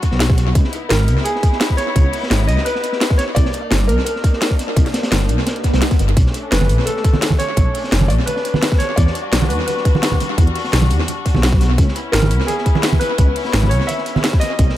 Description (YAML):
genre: liquid drum and bass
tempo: 171 BPM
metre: 4/4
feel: swing 53% on 16ths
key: unclear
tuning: A4 = 437 Hz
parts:
  - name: rich studio string section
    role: sustained chords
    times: 0.0-14.8 s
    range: D3 to F#4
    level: -26 LUFS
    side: left 3 dB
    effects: sidechain pumping
  - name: crunchy breakbeat drum kit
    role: drums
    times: 0.0-14.8 s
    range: hi-hat, snare drum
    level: -26 LUFS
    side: equal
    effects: high-pass filter on hats, high-pass filter on snare, high-pass filter on room, tape echo
  - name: electronic kick drum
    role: drums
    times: 0.0-14.7 s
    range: none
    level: -14 LUFS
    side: equal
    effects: none
  - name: garage drum kit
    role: drums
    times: 0.0-14.7 s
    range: hi-hat, snare drum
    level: -22 LUFS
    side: equal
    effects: tape echo
  - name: dark detuned saw bass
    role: bass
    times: 0.1-14.7 s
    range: F#1 to E2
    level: -17 LUFS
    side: equal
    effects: none
  - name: clear concert grand piano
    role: melody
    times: 0.9-14.8 s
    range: G#4 to E5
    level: -22 LUFS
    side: equal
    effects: tape echo
  - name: swell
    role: sound effects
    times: 5.6-6.2 s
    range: none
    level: -24 LUFS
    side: right 2 dB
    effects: none
  - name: congas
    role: percussion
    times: 6.6-14.2 s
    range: none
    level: -22 LUFS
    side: right 3 dB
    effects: tape echo
room: light reverb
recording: echo-heavy mix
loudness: -14 LUFS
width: side -14 dB against mid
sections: 0.0-14.8 A section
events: swell 5.6-6.2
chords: 0.0 Em9 (rootless); 0.6 C#m9; 3.4 Cm9; 6.2 Bm9; 9.0 Em9; 11.8 C#m7